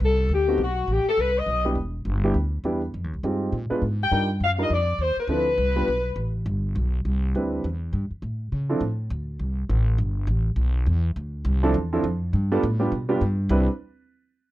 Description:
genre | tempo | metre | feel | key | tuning
jazz, big band swing | 204 BPM | 4/4 | swing 60% on 8ths | C major | A4 = 440 Hz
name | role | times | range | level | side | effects
warm saxophone section | melody | 0.0-1.7, 4.0-6.3 s | F#4 to G5 | -23 LUFS | left 3 dB | slapback echo
upright bass | bass | 0.0-13.7 s | E1 to C#3 | -24 LUFS | equal | none
warm grand piano | accompaniment | 0.5-8.8, 11.6-13.7 s | F3 to Cb5 | -25 LUFS | right 2 dB | none
room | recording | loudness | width
little or no reverb | dry, close 1970s-style studio recording | -22 LUFS | side -15 dB against mid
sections
0.0-8.8 A section; 8.8-13.5 B section; 13.5-14.5 C section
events
none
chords
0.0 Csus2; 0.6 B7b9; 1.8 Em7; 2.9 Fm9; 3.5 Bb7b9; 4.1 Ebmaj9; 5.3 Dm7; 5.9 Asus2; 6.5 Cmaj9; 7.6 Em; 8.2 A; 8.8 D5; 10.0 G; 11.2 Dm7; 12.3 G7; 13.5 Cmaj9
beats
0.00 0.30 | 0.59 0.88 1.18 1.47 | 1.76 2.06 2.35 2.64 | 2.94 3.23 3.52 3.82 | 4.11 4.41 4.70 4.99 | 5.29 5.58 5.87 6.17 | 6.46 6.75 7.05 7.34 | 7.63 7.93 8.22 8.52 | 8.81 9.10 9.40 9.69 | 9.98 10.28 10.57 10.87 | 11.16 11.45 11.74 12.04 | 12.33 12.63 12.92 13.21 | 13.51

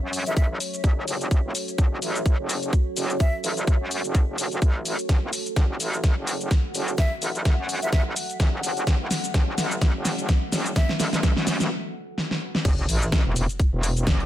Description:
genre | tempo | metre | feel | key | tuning
bass house | 127 BPM | 4/4 | swing 56% on 16ths | F# minor | A4 = 439 Hz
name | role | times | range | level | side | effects
deep dark ambient pad | sustained chords | 0.0-14.3 s | F#4 to F#5 | -33 LUFS | equal | chorus, built-in reverb, sidechain pumping
metallic wobble bass | bass | 0.0-14.3 s | E1 to F#2 | -27 LUFS | equal | chorus, sidechain pumping, high-pass filter
big-room dance drum kit | drums | 0.1-14.3 s | crash cymbal, hi-hat, shaker, snare drum | -27 LUFS | equal | none
breathy jazz flute | melody | 0.3-3.3, 7.0-10.9 s | E5 | -34 LUFS | equal | dub echo
electronic kick drum | drums | 0.4-14.2 s | none | -20 LUFS | equal | overdrive
sub drop | sound effects | 12.7-14.3 s | none | -31 LUFS | equal | none
room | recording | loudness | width
light reverb, digital ambience | none | -21 LUFS | side -13 dB against mid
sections
0.0-12.7 A section; 12.7-14.3 B section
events
build-up 0.0-12.7; drum fill 5.1-11.7, 12.2-12.7; break 11.7-12.7; drop 12.7-14.3; impact 12.7-14.3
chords
0.0 F#m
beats
0.37 0.84 | 1.31 1.78 2.26 2.73 | 3.20 3.67 4.15 4.62 | 5.09 5.56 6.04 6.51 | 6.98 7.45 7.93 8.40 | 8.87 9.34 9.82 10.29 | 10.76 11.23 11.71 12.18 | 12.65 13.12 13.60 14.07

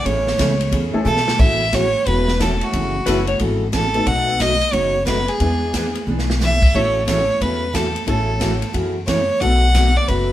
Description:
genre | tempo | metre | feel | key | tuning
country, western swing | 180 BPM | 4/4 | swing 64% on 8ths | A major | A4 = 440 Hz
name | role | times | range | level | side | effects
clear fiddle | melody | 0.0-10.3 s | F#4 to F#5 | -20 LUFS | equal | none
picked steel-string acoustic guitar | accompaniment | 0.0-10.3 s | B2 to G#4 | -25 LUFS | equal | none
upright bass | bass | 0.0-10.3 s | E1 to B2 | -21 LUFS | equal | none
swinging big-band drum kit | drums | 0.1-10.2 s | crash cymbal, hi-hat, kick drum, ride cymbal, snare drum | -23 LUFS | equal | none
honky-tonk upright piano | accompaniment | 0.9-10.3 s | G#3 to A4 | -26 LUFS | left 3 dB | none
clean lap steel guitar | second line | 3.1-3.7 s | A4 to C#5 | -24 LUFS | left 5 dB | none
room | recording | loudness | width
moderate stone room reverb, RT60 1.0 s | band playing live in one room | -16 LUFS | side -13 dB against mid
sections
0.0-1.4 A section; 1.4-10.3 B section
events
fiddle solo 0.0-1.4; drum fill 1.1-1.4, 6.1-6.4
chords
0.1 Amaj7; 1.4 A6; 2.7 F#m7; 4.1 B7; 5.4 E7; 6.7 A6; 9.4 Bm7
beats
| 0.06 0.40 0.73 1.06 | 1.40 1.73 2.06 2.40 | 2.73 3.06 3.40 3.73 | 4.07 4.40 4.74 5.07 | 5.40 5.74 6.07 6.41 | 6.74 7.08 7.41 7.74 | 8.08 8.41 8.75 9.08 | 9.42 9.75 10.09

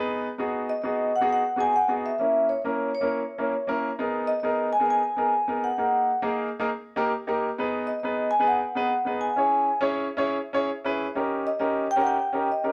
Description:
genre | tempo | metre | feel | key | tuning
soul | 134 BPM | 4/4 | swing 63% on 8ths | G# minor | A4 = 440 Hz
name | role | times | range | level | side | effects
warm baby grand piano | accompaniment | 0.0-12.7 s | A#3 to C#5 | -29 LUFS | equal | none
vibraphone with soft mallets | melody | 0.7-12.6 s | C#5 to G#5 | -26 LUFS | equal | slapback echo
room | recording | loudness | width
wet studio reverb, RT60 0.5 s | none | -25 LUFS | mono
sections
0.4-12.7 A section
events
none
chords
0.4 G#m7; 2.2 A#dim; 4.0 G#madd9; 5.8 D#sus4; 6.7 D#; 7.6 G#m; 9.4 C#m; 11.2 D#7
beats
| 0.41 0.85 1.30 1.75 | 2.20 2.65 3.09 3.54 | 3.99 4.44 4.89 5.34 | 5.79 6.23 6.68 7.13 | 7.58 8.03 8.47 8.92 | 9.37 9.82 10.26 10.71 | 11.16 11.61 12.05 12.50

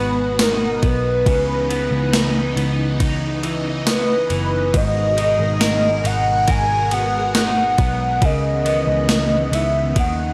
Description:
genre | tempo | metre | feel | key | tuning
dream pop | 69 BPM | 4/4 | straight | unclear | A4 = 439 Hz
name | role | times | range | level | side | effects
warm velvety synth lead | melody | 0.0-10.3 s | A#4 to G#5 | -22 LUFS | equal | chorus, analog delay
phased string machine | sustained chords | 0.0-10.3 s | B2 to A#4 | -30 LUFS | equal | ensemble chorus, phaser
electric guitar at the edge of break-up | arpeggios | 0.0-10.3 s | G#2 to A#4 | -28 LUFS | equal | lush chorus, analog delay
vintage muted picked electric bass | bass | 0.0-10.3 s | F#1 to D#2 | -26 LUFS | equal | none
gated 80s digital drum machine | drums | 0.4-10.2 s | kick drum, ride cymbal, snare drum, tambourine | -24 LUFS | equal | gated reverb, gated reverb snare, overdrive
vibraphone with soft mallets | texture | 4.7-9.1 s | A#4 to D#5 | -35 LUFS | equal | none
room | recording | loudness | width
light reverb | dry, gritty hardware recording | -18 LUFS | mono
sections
0.0-10.3 A section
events
none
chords
0.0 G#m9; 1.3 C#m9; 4.7 G#m9; 8.2 C#m9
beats
0.39 | 1.26 2.13 3.00 3.87 | 4.74 5.61 6.48 7.35 | 8.22 9.09 9.96

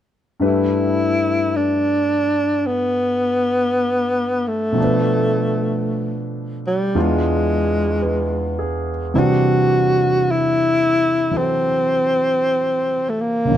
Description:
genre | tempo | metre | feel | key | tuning
jazz ballad | 55 BPM | 4/4 | swing 68% on 8ths | G major | A4 = 440 Hz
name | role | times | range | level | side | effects
warm grand piano | accompaniment | 0.4-13.6 s | C#2 to B4 | -21 LUFS | equal | none
mellow tenor saxophone | melody | 0.5-13.6 s | G3 to F#4 | -18 LUFS | equal | none
room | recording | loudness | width
light reverb | dark, warm production | -16 LUFS | side -10 dB against mid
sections
0.4-13.6 A section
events
none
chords
0.4 G6; 4.8 Bm7b5; 7.0 E7b9; 9.1 Am7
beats
| 0.41 1.50 2.59 3.69 | 4.78 5.87 6.95 8.04 | 9.13 10.22 11.31 12.40 | 13.49

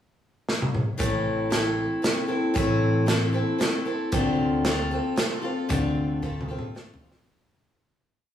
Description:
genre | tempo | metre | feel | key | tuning
folk rock and heartland rock | 115 BPM | 3/4 | straight | A minor | A4 = 440 Hz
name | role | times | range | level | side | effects
natural country drum kit | drums | 0.5-7.2 s | hi-hat, kick drum, snare drum, toms | -27 LUFS | right 1 dB | none
picked steel-string acoustic guitar | accompaniment | 1.0-7.3 s | A2 to A4 | -25 LUFS | left 2 dB | none
upright bass | bass | 1.0-6.5 s | A1 to D2 | -28 LUFS | right 1 dB | none
room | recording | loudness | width
moderate stone room reverb, RT60 1.0 s | rough rehearsal-room recording, small room ambience | -22 LUFS | side -10 dB against mid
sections
0.0-1.0 pickup bar; 1.0-7.3 verse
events
drum fill 0.5-1.0, 6.2-7.3; fade-out 5.7-7.3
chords
0.0 N.C.; 1.0 Am; 4.1 Dm7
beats
0.48 | 1.00 1.52 2.04 | 2.56 3.09 3.61 | 4.13 4.65 5.18 | 5.70 6.23 6.75

